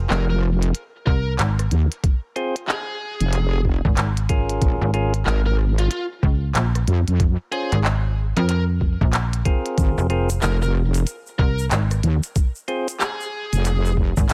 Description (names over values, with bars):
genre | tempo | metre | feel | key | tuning
glitch hop | 93 BPM | 4/4 | swing 62% on 16ths | unclear | A4 = 443 Hz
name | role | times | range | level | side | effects
slap-like FM bass | bass | 0.0-14.3 s | F1 to F2 | -23 LUFS | equal | none
biting lead guitar | melody | 0.1-13.9 s | F4 to Bb4 | -33 LUFS | equal | overdrive, delay
wobble bass | bass | 0.1-14.1 s | F1 to F2 | -21 LUFS | equal | chorus, tube saturation
glitchy drum kit | drums | 0.1-14.3 s | handclaps, hi-hat, rim click | -29 LUFS | equal | none
electronic kick drum | drums | 1.1-14.3 s | none | -21 LUFS | equal | overdrive
percussive tonewheel organ | stabs | 2.4-12.9 s | C4 to C5 | -30 LUFS | equal | overdrive, stopped rotary speaker, sidechain pumping
tube shaker | percussion | 9.8-14.3 s | none | -38 LUFS | equal | none
room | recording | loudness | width
digital ambience | none | -21 LUFS | mono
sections
0.0-14.3 A section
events
none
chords
0.0 Ab69; 4.6 Bbm7; 9.8 Ab69